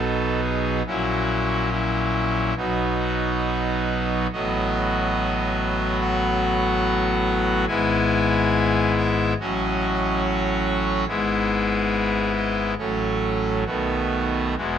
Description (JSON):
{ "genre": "classical, chorale-style piece for pipe organ", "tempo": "70 BPM", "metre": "4/4", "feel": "rubato", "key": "unclear", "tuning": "A4 = 440 Hz", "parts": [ { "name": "pipe organ, trumpet", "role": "solo", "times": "0.0-14.8 s", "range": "E1 to G#5", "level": "-20 LUFS", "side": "equal", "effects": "none" } ], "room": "moderate stone room reverb, RT60 1.1 s", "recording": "close, detailed microphones", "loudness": "-20 LUFS", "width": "side -9 dB against mid", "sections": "0.0-14.8 A section", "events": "none", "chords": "0.0 B; 0.9 F#7/A#; 2.6 B; 4.3 B7/A; 7.7 E/G#; 9.4 F#m/A; 11.1 E/G#; 12.8 F#m/A; 13.7 B7" }